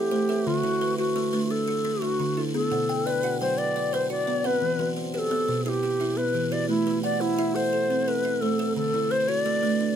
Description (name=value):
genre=southern african traditional, mbira-style interlocking cycle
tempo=116 BPM (dotted quarters)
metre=12/8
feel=straight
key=A dorian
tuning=A4 = 440 Hz
part: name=low Native American-style wooden flute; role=melody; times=0.0-10.0 s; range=E4 to D5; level=-25 LUFS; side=left 1 dB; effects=none
part: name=buzzing kalimba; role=arpeggios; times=0.0-10.0 s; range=B2 to G5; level=-28 LUFS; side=right 1 dB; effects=none
part: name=kalimba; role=arpeggios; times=0.0-10.0 s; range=B2 to G5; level=-32 LUFS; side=right 5 dB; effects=none
room=little or no reverb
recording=close, detailed microphones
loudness=-23 LUFS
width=side -8 dB against mid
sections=0.0-10.0 A section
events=none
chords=0.5 D; 2.5 Bm; 4.6 Em; 6.7 Am; 8.8 D